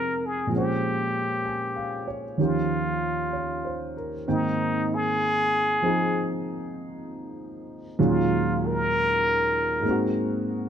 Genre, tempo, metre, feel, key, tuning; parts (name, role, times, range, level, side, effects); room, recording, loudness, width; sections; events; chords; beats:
jazz; 64 BPM; 4/4; swing 68% on 8ths; Ab major from 4.3 s; A4 = 441 Hz
trumpet with plunger mute; melody; 0.0-10.1 s; Eb4 to Bb4; -26 LUFS; left 1 dB
warm concert grand piano; accompaniment; 0.0-10.7 s; Eb2 to Ab5; -26 LUFS; right 1 dB
moderate plate reverb, RT60 3.0 s; dark, warm production; -23 LUFS; side -8 dB against mid
0.0-4.3 A section; 4.3-10.7 B section
muted trumpet solo 4.3-10.7
0.0 Fm11; 0.5 Bbm7; 2.4 Eb9; 4.3 Abmaj9; 8.0 Ebm11; 9.8 Ab9
| 0.52 1.45 2.38 3.32 | 4.26 5.19 6.12 7.05 | 7.98 8.90 9.83